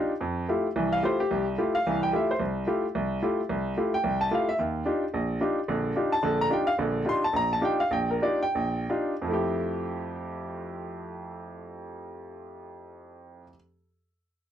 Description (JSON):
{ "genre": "jazz", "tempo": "154-220 BPM", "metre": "4/4", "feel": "swing 59% on 8ths", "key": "F major", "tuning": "A4 = 440 Hz", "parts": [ { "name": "bright baby grand piano", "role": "solo", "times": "0.0-13.5 s", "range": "Bb1 to C6", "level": "-26 LUFS", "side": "equal", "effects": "none" } ], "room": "light reverb", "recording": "dry, close 1970s-style studio recording", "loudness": "-25 LUFS", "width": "side -10 dB against mid", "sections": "0.2-9.3 A section; 9.3-12.4 B section", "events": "slowing down 6.8-9.3", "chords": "0.2 Fmaj9; 4.6 Ebmaj9; 9.3 Fmaj9" }